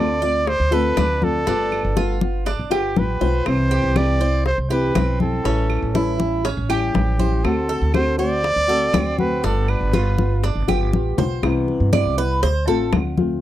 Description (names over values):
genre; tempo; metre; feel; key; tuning
latin, Cuban son and guajira; 120 BPM; 4/4; straight; C major; A4 = 444 Hz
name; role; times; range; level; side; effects
warm trumpet; melody; 0.0-10.4 s; G4 to D5; -23 LUFS; right 1 dB; none
flamenco guitar; accompaniment; 0.0-13.4 s; C3 to F#4; -24 LUFS; left 3 dB; none
Cuban tres; arpeggios; 0.0-12.9 s; C4 to D5; -26 LUFS; right 6 dB; none
upright bass; bass; 0.0-13.4 s; G1 to G2; -22 LUFS; right 1 dB; none
congas; percussion; 0.2-13.4 s; none; -24 LUFS; left 3 dB; none
bongos; percussion; 0.5-13.4 s; none; -27 LUFS; left 8 dB; none
claves; percussion; 1.0-13.2 s; none; -35 LUFS; right 14 dB; none
room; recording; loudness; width
little or no reverb; dry, close 1970s-style studio recording; -17 LUFS; side -13 dB against mid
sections
0.0-11.4 A section; 11.4-13.4 B section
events
drum fill 2.7-3.5, 10.7-11.4; Cuban tres solo 11.4-13.4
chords
0.0 Dm7; 1.5 G7; 3.5 C; 5.5 A7; 7.4 D7; 9.4 G7; 11.4 Cmaj7; 12.4 Dm7